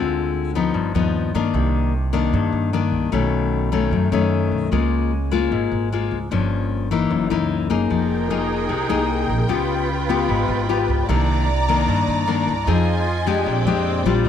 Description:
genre	bossa nova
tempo	151 BPM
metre	4/4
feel	straight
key	C minor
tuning	A4 = 440 Hz
part	nylon-string guitar	accompaniment	0.0-14.3 s	F#2 to G#4	-20 LUFS	left 6 dB	none
part	upright bass	bass	0.0-14.3 s	F1 to G2	-23 LUFS	right 2 dB	none
part	rich studio string section	sustained chords	7.9-14.3 s	C4 to Bb5	-24 LUFS	right 2 dB	none
room	moderate spring reverb, RT60 1.3 s, small room reverb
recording	none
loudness	-18 LUFS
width	side -9 dB against mid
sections	0.0-1.5 A section; 1.5-14.3 A section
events	none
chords	0.0 Dm7b5; 0.7 G7alt; 1.5 Cm9; 3.1 B9; 4.7 Db6; 6.3 Gm7b5; 7.1 F#13; 7.9 Fm11; 9.5 Db7#11; 11.1 Cm9; 12.7 Fm7; 13.5 Bb13

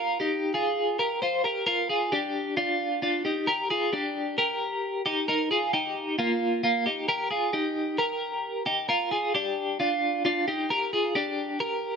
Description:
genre	indie pop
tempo	133 BPM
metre	4/4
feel	straight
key	unclear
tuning	A4 = 440 Hz
part	twelve-string electric guitar	solo	0.0-12.0 s	Bb3 to C5	-24 LUFS	equal	tremolo
room	moderate studio reverb, RT60 0.9 s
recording	none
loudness	-24 LUFS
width	side -6 dB against mid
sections	0.0-1.7 A section; 1.7-12.0 B section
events	none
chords	0.0 Bb5; 1.7 Gm7; 5.3 Absus2; 7.1 Eb; 8.9 Gm7

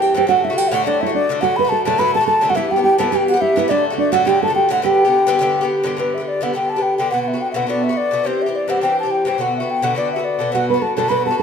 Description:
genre	celtic folk, Celtic reel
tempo	211 BPM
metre	4/4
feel	swing 54% on 8ths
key	G major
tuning	A4 = 440 Hz
part	baroque flute	melody	0.0-11.4 s	B4 to B5	-18 LUFS	left 2 dB	none
part	nylon-string guitar	second line	0.0-5.7, 10.5-11.4 s	D4 to B4	-20 LUFS	right 9 dB	none
part	Irish bouzouki	accompaniment	0.0-11.4 s	G2 to G4	-20 LUFS	left 2 dB	none
room	moderate plate reverb, RT60 2.7 s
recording	minimal, uncompressed stereo recording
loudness	-15 LUFS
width	side -6 dB against mid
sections	0.0-6.0 A section; 6.0-11.4 A section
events	none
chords	0.3 D; 2.6 Em; 3.7 D; 4.8 G; 7.1 Bm; 8.3 C; 9.4 Bm

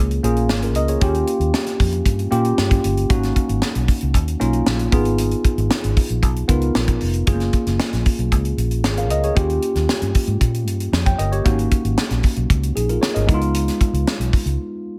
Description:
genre	polished 1980s jazz-funk pop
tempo	115 BPM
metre	4/4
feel	straight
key	F# major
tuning	A4 = 440 Hz
part	tine electric piano	accompaniment	0.0-15.0 s	G#3 to G5	-24 LUFS	equal	lush chorus
part	vintage muted fingered electric bass	bass	0.0-14.6 s	E#1 to A#2	-23 LUFS	equal	none
part	tight funk drum kit	drums	0.1-14.6 s	hi-hat, kick drum, snare drum	-22 LUFS	equal	gated reverb
room	light reverb, small room ambience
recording	none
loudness	-19 LUFS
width	mono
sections	0.0-15.0 A section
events	break 14.6-15.0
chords	0.0 F#maj7 (rootless); 1.0 D#7; 3.1 G#9sus4; 4.9 C#7/G# (rootless); 7.3 F#maj7; 9.4 D#7; 11.5 G#9sus4; 13.3 C#7

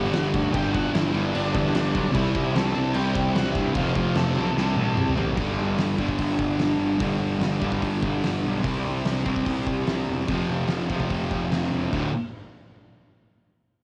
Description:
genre	garage rock duo or trio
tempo	147 BPM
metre	4/4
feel	straight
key	unclear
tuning	A4 = 440 Hz
part	octave-fuzz lead guitar	melody	0.0-5.1 s	D4 to A4	-34 LUFS	equal	distortion, cassette tape
part	thick fuzz guitar	riff	0.0-12.1 s	D2 to C4	-27 LUFS	equal	distortion
part	fuzz picked electric bass	bass	0.0-12.1 s	D1 to G2	-31 LUFS	equal	overdrive
part	oversized low-tuned drum kit	drums	0.0-12.0 s	crash cymbal, hi-hat, kick drum, snare drum, toms	-31 LUFS	equal	cassette tape
room	light reverb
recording	home recording on cassette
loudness	-24 LUFS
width	mono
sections	0.0-5.4 A section; 5.4-11.9 B section; 11.9-13.6 C section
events	drum fill 4.6-5.4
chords	0.0 G5; 2.1 C; 3.8 F; 4.6 C5; 5.4 G5; 8.6 C5; 10.3 F5; 11.9 D5

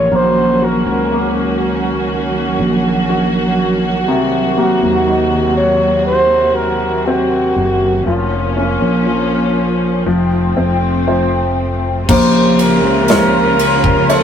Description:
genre	pop ballad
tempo	60 BPM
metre	4/4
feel	straight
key	Bb harmonic minor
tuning	A4 = 444 Hz
part	mellow flugelhorn	melody	0.0-14.2 s	F4 to Db5	-16 LUFS	equal	ping-pong delay
part	clear baby grand piano	accompaniment	0.0-14.2 s	C3 to Db5	-19 LUFS	left 4 dB	none
part	warm studio string section	sustained chords	0.0-14.2 s	C3 to Gb4	-17 LUFS	right 2 dB	none
part	fretless electric bass	bass	0.0-14.2 s	F1 to Eb2	-18 LUFS	equal	none
part	modern studio drum kit	drums	12.1-14.2 s	crash cymbal, kick drum, ride cymbal, snare drum	-17 LUFS	equal	none
room	wet booth ambience, RT60 0.2 s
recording	rough rehearsal-room recording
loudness	-12 LUFS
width	side -8 dB against mid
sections	0.0-12.1 A section; 12.1-14.2 B section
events	grand piano fill 10.6-12.1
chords	0.1 Ebm7/Bb; 4.1 Cm7b5; 8.1 Bbm/F; 10.1 F; 12.1 Bbmadd9

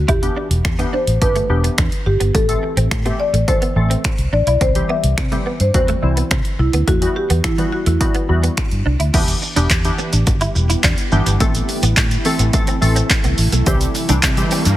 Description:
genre	dance-pop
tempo	106 BPM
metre	4/4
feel	straight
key	E minor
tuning	A4 = 439 Hz
part	vintage muted fingered electric bass	bass	0.0-14.8 s	E1 to E3	-17 LUFS	equal	sidechain pumping
part	marimba with medium mallets	melody	0.1-8.8 s	E4 to E5	-21 LUFS	left 1 dB	tape echo
part	direct-recorded clean electric guitar	riff	0.1-14.8 s	A3 to E4	-26 LUFS	right 3 dB	ensemble chorus
part	punchy analog drum machine	drums	0.1-14.8 s	crash cymbal, finger snaps, handclaps, hi-hat, kick drum, shaker	-18 LUFS	equal	soft clipping on snare
part	glassy wavetable pluck	accompaniment	0.2-14.8 s	E3 to A4	-22 LUFS	equal	chorus, sidechain pumping
part	shimmering ambient pad	sustained chords	10.1-14.8 s	C3 to A4	-26 LUFS	equal	chorus, built-in reverb, sidechain pumping
part	egg shaker	percussion	13.7-14.8 s	none	-34 LUFS	left 8 dB	none
part	riser	sound effects	14.0-14.8 s	none	-28 LUFS	right 1 dB	none
room	little or no reverb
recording	dense, heavily limited modern master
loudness	-14 LUFS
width	side -14 dB against mid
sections	0.0-9.1 A section; 9.1-14.8 B section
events	riser 14.0-14.8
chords	0.1 Em7; 2.3 Am; 4.6 C; 9.1 Em7; 11.4 Am; 13.7 C

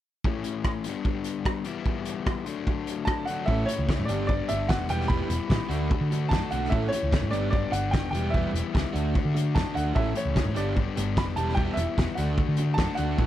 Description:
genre	indie rock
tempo	148 BPM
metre	4/4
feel	straight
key	A mixolydian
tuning	A4 = 442 Hz
part	overdriven electric guitar	riff	0.2-13.3 s	G2 to F#4	-32 LUFS	left 8 dB	none
part	loose indie drum kit	drums	0.2-13.3 s	hi-hat, kick drum, rim click, snare drum	-28 LUFS	equal	none
part	bright upright piano	melody	3.1-13.3 s	C#5 to B5	-32 LUFS	right 1 dB	tape echo
part	overdriven semi-hollow guitar	riff	3.5-13.3 s	D3 to A4	-34 LUFS	right 7 dB	wide subtle chorus
part	hollow-body short-scale picked electric bass	bass	3.5-13.3 s	E1 to D3	-28 LUFS	equal	none
room	little or no reverb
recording	none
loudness	-24 LUFS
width	side -12 dB against mid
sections	0.2-3.5 A section; 3.5-13.3 B section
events	none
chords	0.2 A; 0.9 G; 1.7 Em; 2.5 D; 3.5 A; 4.1 G; 4.9 Em; 5.7 D; 6.7 A; 7.3 G; 8.1 Em; 8.9 D; 10.0 A; 10.6 G; 11.4 Em; 12.2 D

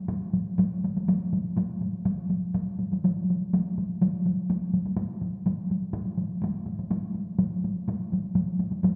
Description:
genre	japanese traditional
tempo	123 BPM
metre	4/4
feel	straight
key	none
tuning	none
part	taiko ensemble	percussion	0.1-9.0 s	none	-28 LUFS	equal	none
room	wet recital hall reverb, RT60 1.6 s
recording	recorded in a church or concert hall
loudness	-28 LUFS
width	mono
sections	0.0-9.0 A section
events	none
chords	none

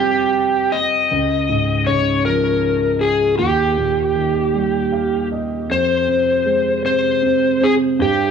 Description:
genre	pop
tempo	52 BPM (dotted quarters)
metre	6/8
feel	straight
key	unclear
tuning	A4 = 440 Hz
part	overdriven slide guitar	melody	0.0-8.3 s	G4 to Eb5	-17 LUFS	left 1 dB	cassette tape, tape echo
part	dark concert grand piano	accompaniment	0.0-8.3 s	Db2 to F5	-19 LUFS	right 2 dB	cassette tape
room	light reverb, studio ambience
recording	home recording on cassette, small room ambience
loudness	-15 LUFS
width	side -6 dB against mid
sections	0.0-5.7 A section; 5.7-8.3 B section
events	grand piano fill 4.5-5.7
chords	0.0 Fsus2; 1.1 Db; 3.4 Eb; 5.7 Fm

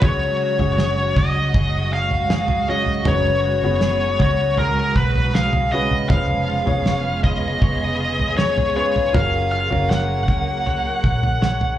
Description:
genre	pop ballad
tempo	79 BPM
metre	4/4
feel	straight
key	F# major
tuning	A4 = 440 Hz
part	high-gain lead guitar	melody	0.0-11.8 s	A#4 to F#5	-21 LUFS	left 1 dB	distortion, plate reverb, slapback echo
part	clear baby grand piano	accompaniment	0.0-11.8 s	C#3 to C#5	-28 LUFS	left 2 dB	plate reverb, slapback echo
part	warm studio string section	sustained chords	0.0-11.8 s	C#3 to G#4	-26 LUFS	right 2 dB	none
part	direct-recorded clean electric guitar	arpeggios	0.0-11.8 s	E#3 to C#5	-33 LUFS	right 2 dB	wide subtle chorus, plate reverb, slapback echo
part	vintage muted fingered electric bass	bass	0.0-11.8 s	E#1 to C#2	-23 LUFS	equal	none
part	damped 70s drum kit	drums	0.0-11.8 s	kick drum, snare drum, toms	-21 LUFS	equal	none
room	light reverb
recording	live gig heard through the venue's PA, club reverb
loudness	-17 LUFS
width	side -12 dB against mid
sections	0.0-11.8 A section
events	none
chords	0.0 F#sus2; 6.1 C#7/E#; 9.1 F#maj7

